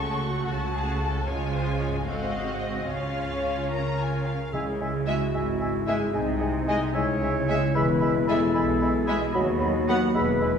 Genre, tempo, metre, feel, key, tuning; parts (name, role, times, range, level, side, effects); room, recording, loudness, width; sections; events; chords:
classical; 75 BPM (dotted quarters); 6/8; straight; Db major, C# minor from 4.5 s; A4 = 439 Hz
rich symphonic violin section; melody; 0.0-10.0 s; Db5 to Db6; -35 LUFS; left 2 dB
rich symphonic violin section; second line; 0.0-10.0 s; Gb4 to Bb5; -34 LUFS; left 2 dB
rich symphonic viola section; accompaniment; 0.0-10.0 s; Ab3 to Gb4; -34 LUFS; right 2 dB
concert harp; arpeggios; 0.0-10.6 s; Ab2 to G#5; -33 LUFS; left 5 dB
rich symphonic double bass section; bass; 0.0-10.6 s; E1 to D#2; -32 LUFS; right 2 dB
warm symphonic cello section; bass; 0.0-10.6 s; D#2 to Db3; -30 LUFS; right 2 dB
mellow clarinet; second line; 3.7-10.6 s; D#4 to C#5; -30 LUFS; left 1 dB
clear oboe; second line; 4.5-10.5 s; D#5 to E5; -34 LUFS; right 2 dB
concert flute; second line; 4.5-10.5 s; G#5 to B5; -34 LUFS; equal
mellow bassoon; accompaniment; 4.5-10.5 s; F#3 to G#3; -33 LUFS; right 2 dB
dark French horn section; sustained chords; 4.5-10.6 s; G#3 to G#4; -30 LUFS; left 5 dB
timpani; percussion; 4.5-5.3 s; C#3; -39 LUFS; right 1 dB
wet scoring stage reverb, RT60 1.8 s; heard from further back in the room; -23 LUFS; side -7 dB against mid
0.0-4.5 A section; 4.5-10.6 B section
0.0 Gbm/Db; 1.3 Db; 2.1 Ab7b9; 2.9 Db; 4.5 C#m; 6.1 G#/B#; 7.0 C#m; 7.8 E; 9.3 B/D#